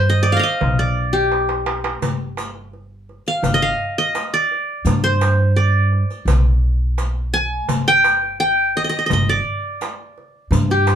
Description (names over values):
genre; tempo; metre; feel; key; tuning
Arabic maqam ensemble; 85 BPM; 4/4; straight; G maqam hijaz; A4 = 440 Hz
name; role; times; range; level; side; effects
qanun; melody; 0.0-11.0 s; G4 to Ab5+25c; -18 LUFS; equal; none
upright bass; bass; 0.0-11.0 s; G1 to G2; -18 LUFS; right 1 dB; none
darbuka; percussion; 0.3-11.0 s; none; -24 LUFS; equal; none
riq; percussion; 2.0-11.0 s; none; -30 LUFS; left 4 dB; none
room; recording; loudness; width
moderate studio reverb, RT60 0.6 s; band playing live in one room; -16 LUFS; side -9 dB against mid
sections
0.0-11.0 A section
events
drum fill 1.3-2.0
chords
none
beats
0.61 1.31 | 2.02 2.73 3.44 4.14 | 4.85 5.56 6.27 6.98 | 7.68 8.39 9.10 9.81 | 10.52